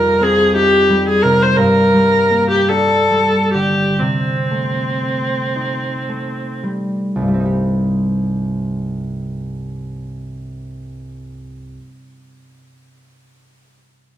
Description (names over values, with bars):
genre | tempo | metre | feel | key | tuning
classical, impressionist duo for viola and harp | 36-60 BPM (dotted quarters) | 6/8 | rubato | C dorian | A4 = 441 Hz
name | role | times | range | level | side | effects
rich viola | melody | 0.0-6.6 s | C4 to C5 | -15 LUFS | left 1 dB | none
concert harp | accompaniment | 0.0-12.0 s | C2 to G4 | -18 LUFS | equal | none
room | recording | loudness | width
wet recital hall reverb, RT60 1.4 s | close, detailed microphones | -14 LUFS | side -11 dB against mid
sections
0.0-7.1 A section; 7.1-13.0 B section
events
slowing down 0.6-7.1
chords
0.0 Fsus2; 1.6 Gm; 4.0 Cm6; 7.1 Cm